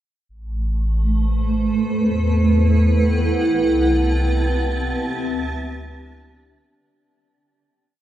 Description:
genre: ambient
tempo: 74 BPM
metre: 4/4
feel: straight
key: A dorian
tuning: A4 = 435 Hz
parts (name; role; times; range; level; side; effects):
- granular cloud pad; sustained chords; 1.0-6.8 s; A3 to G5; -20 LUFS; right 1 dB; built-in reverb
- round analog bass; bass; 0.3-6.7 s; A1 to E2; -20 LUFS; equal; none
- wind-like tuned noise texture; texture; 3.9-6.8 s; A5; -32 LUFS; right 4 dB; built-in reverb
room: wet cathedral reverb, RT60 5.8 s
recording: dark, warm production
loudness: -17 LUFS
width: side -12 dB against mid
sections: 0.3-6.8 A section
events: fade-out 3.5-6.8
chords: 0.3 Amadd9; 1.9 Emadd9; 3.5 Cmaj7; 5.2 Dsus4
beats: | 0.29 1.10 1.91 2.73 | 3.54 4.35 5.16 5.97

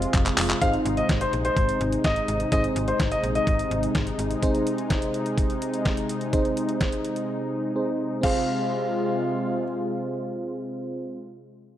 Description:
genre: synth-pop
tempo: 126 BPM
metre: 4/4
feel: straight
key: unclear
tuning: A4 = 440 Hz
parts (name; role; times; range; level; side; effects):
- FM electric piano; accompaniment; 0.0-11.2 s; C4 to F5; -29 LUFS; right 3 dB; chorus, low-pass filter
- warm analog pad; sustained chords; 0.0-11.2 s; C3 to F4; -29 LUFS; left 2 dB; chorus, low-pass filter
- slap-like FM bass; bass; 0.0-4.4 s; F1 to Bb1; -29 LUFS; equal; none
- detuned 8-bit digital drum machine; drums; 0.0-8.3 s; crash cymbal, handclaps, hi-hat, kick drum, snare drum; -26 LUFS; equal; none
- clear concert grand piano; second line; 0.6-3.7, 8.2-9.6 s; C5 to F5; -27 LUFS; left 1 dB; slapback echo
room: light reverb, digital ambience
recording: none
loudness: -22 LUFS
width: side -12 dB against mid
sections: 0.6-8.2 A section; 8.2-11.8 B section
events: drum fill 0.1-0.6; filter sweep 0.6-8.2; break 7.3-8.2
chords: 0.0 Fm; 0.6 Ab; 8.2 Fm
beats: 0.14 | 0.61 1.09 1.57 2.04 | 2.52 3.00 3.47 3.95 | 4.42 4.90 5.38 5.85 | 6.33 6.81 7.28 7.76 | 8.23 8.71 9.19 9.66 | 10.14 10.62 11.09

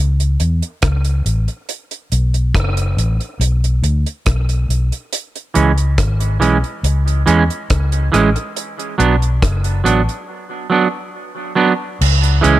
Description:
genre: dub reggae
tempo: 70 BPM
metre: 4/4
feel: straight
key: C# phrygian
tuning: A4 = 440 Hz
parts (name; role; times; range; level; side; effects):
- vintage muted fingered electric bass; bass; 0.0-12.6 s; F#1 to E2; -15 LUFS; equal; none
- deep reggae drum kit; drums; 0.2-12.6 s; crash cymbal, hi-hat, kick drum, rim click; -20 LUFS; right 1 dB; none
- semi-hollow electric guitar; accompaniment; 5.5-12.6 s; E3 to D4; -16 LUFS; right 4 dB; low-pass filter, dub echo
room: light reverb, studio reverb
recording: none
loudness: -14 LUFS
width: side -14 dB against mid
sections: 0.0-12.0 A section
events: break 0.0-5.1, 10.3-12.0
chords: 0.0 C#m; 1.7 N.C.; 5.1 C#m; 8.6 Bm; 12.0 C#m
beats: 0.83 | 1.69 2.55 3.40 4.26 | 5.12 5.98 6.84 7.70 | 8.56 9.42 10.28 11.14 | 12.00

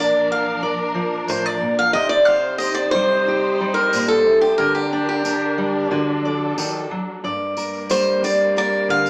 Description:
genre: acoustic folk duo or small band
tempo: 91 BPM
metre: 4/4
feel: straight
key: G minor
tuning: A4 = 442 Hz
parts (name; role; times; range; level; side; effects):
- picked swing-style acoustic guitar; melody; 0.0-9.1 s; G4 to F5; -20 LUFS; equal; none
- fingerpicked steel-string acoustic guitar; accompaniment; 0.0-9.1 s; G2 to D5; -25 LUFS; equal; none
- warm studio string section; sustained chords; 0.0-9.1 s; D3 to C5; -29 LUFS; equal; none
- tambourine; percussion; 1.3-9.1 s; none; -33 LUFS; equal; none
room: moderate studio reverb, RT60 0.5 s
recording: band playing live in one room, small speaker sound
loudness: -19 LUFS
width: mono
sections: 0.0-7.2 A section; 7.2-9.1 B section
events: steel-string acoustic guitar solo 0.0-7.2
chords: 0.0 Bb; 1.9 Cm; 4.6 Gm/D; 5.9 D; 7.2 Gm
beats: 0.62 1.28 | 1.95 2.61 3.27 3.93 | 4.59 5.25 5.92 6.58 | 7.24 7.90 8.56

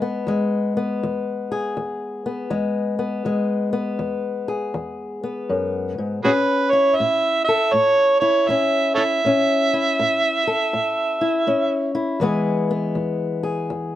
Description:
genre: acoustic country blues, solo or duo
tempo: 81 BPM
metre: 4/4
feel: swing 64% on 8ths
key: E major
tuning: A4 = 440 Hz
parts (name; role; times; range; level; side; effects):
- fingerpicked old ladder-braced acoustic guitar; accompaniment; 0.0-14.0 s; E2 to A4; -22 LUFS; left 3 dB; none
- overdriven harmonica; melody; 6.2-11.9 s; F#4 to E5; -18 LUFS; right 2 dB; plate reverb
room: moderate studio reverb, RT60 0.7 s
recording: dark, warm production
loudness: -18 LUFS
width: side -12 dB against mid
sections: 0.0-14.0 A section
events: none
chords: 0.0 E; 6.2 A; 12.2 E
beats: | 0.28 1.02 1.77 2.51 | 3.26 4.00 4.75 5.49 | 6.24 6.98 7.73 8.47 | 9.22 9.96 10.71 11.45 | 12.20 12.94 13.69

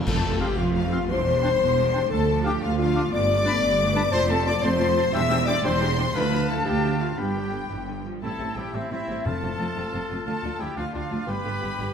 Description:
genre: cinematic, heroic adventure film score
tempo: 118 BPM (dotted quarters)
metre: 6/8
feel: straight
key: F lydian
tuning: A4 = 443 Hz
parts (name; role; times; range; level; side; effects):
- rich symphonic violin section; melody; 0.0-11.9 s; E5 to E6; -35 LUFS; left 5 dB; none
- clear symphonic viola section; accompaniment; 0.0-11.9 s; D3 to E4; -34 LUFS; left 1 dB; none
- rich symphonic violin section; second line; 0.1-11.8 s; B3 to E6; -36 LUFS; left 4 dB; none
- mellow French horn section; sustained chords; 0.1-11.9 s; C4 to E5; -27 LUFS; left 5 dB; none
- clear trumpet section; stabs; 0.1-11.9 s; E4 to E5; -31 LUFS; left 2 dB; none
- clear symphonic double bass section; bass; 0.1-11.9 s; E1 to D2; -29 LUFS; right 3 dB; none
- rich symphonic cello section; bass; 0.1-11.9 s; D2 to A2; -29 LUFS; right 5 dB; none
- clash cymbals and concert bass drum; percussion; 0.1-0.7 s; none; -30 LUFS; equal; none
- timpani; percussion; 0.1-0.5, 9.3-9.7 s; F2; -32 LUFS; left 1 dB; none
- clear clarinet; second line; 0.4-8.0 s; C4 to F4; -36 LUFS; left 2 dB; none
- concert flute; second line; 0.4-11.9 s; E5 to D6; -36 LUFS; left 2 dB; none
- warm oboe; second line; 0.4-11.9 s; C4 to A5; -36 LUFS; right 1 dB; none
room: wet scoring stage reverb, RT60 1.6 s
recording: none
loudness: -21 LUFS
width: side -7 dB against mid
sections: 0.1-8.2 A section; 8.2-11.9 B section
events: band accent 0.1-0.4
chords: 0.1 F; 1.1 Cadd9/E; 2.1 Dm; 3.1 Gadd9; 4.1 F; 5.1 Cadd9/E; 6.1 Dmadd9; 7.2 G; 8.2 Am7; 9.3 F; 10.3 Dm; 11.3 G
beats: | 0.07 0.58 | 1.10 1.60 | 2.11 2.61 | 3.12 3.62 | 4.13 4.63 | 5.13 5.64 | 6.15 6.66 | 7.18 7.70 | 8.22 8.73 | 9.25 9.76 | 10.26 10.77 | 11.28 11.79

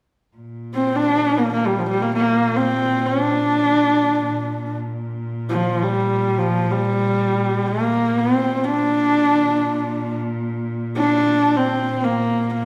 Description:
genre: mongolian traditional, Mongolian folk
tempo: free time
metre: none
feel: none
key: Bb gong mode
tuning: A4 = 440 Hz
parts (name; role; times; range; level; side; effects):
- warm cello; drone; 0.4-12.7 s; Bb2; -28 LUFS; equal; none
- rich horsehead fiddle; melody; 0.7-12.7 s; F3 to D4; -20 LUFS; equal; none
room: wet recital hall reverb, RT60 1.4 s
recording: recorded in a church or concert hall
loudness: -20 LUFS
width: mono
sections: 0.4-12.7 A section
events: none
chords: none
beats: free time

